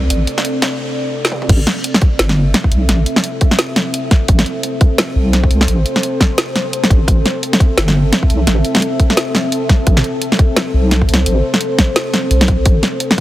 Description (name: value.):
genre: half-time drum and bass.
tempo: 172 BPM.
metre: 4/4.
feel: swing 58% on 16ths, half-time.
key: A minor.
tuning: A4 = 443 Hz.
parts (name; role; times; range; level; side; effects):
deep dark ambient pad; sustained chords; 0.0-13.2 s; C4 to E5; -20 LUFS; left 1 dB; chorus, built-in reverb, sidechain pumping.
deep soft wobble bass; bass; 0.0-12.8 s; G1 to C2; -14 LUFS; equal; chorus.
drum and bass drum kit; drums; 0.1-13.2 s; crash cymbal, hi-hat, snare drum, toms; -16 LUFS; equal; high-pass filter on hats, high-pass filter on snare, high-pass filter on toms, high-pass filter on cymbals, high-pass filter on room.
electronic kick drum; drums; 1.5-13.2 s; none; -12 LUFS; equal; none.
room: little or no reverb.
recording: heavily compressed radio sound, multiband compression.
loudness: -12 LUFS.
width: side -15 dB against mid.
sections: 0.0-1.5 A section; 1.5-13.2 B section.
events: build-up 0.0-1.5; break 0.8-1.5; drum fill 1.2; drop 1.5-13.2.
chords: 0.0 Am.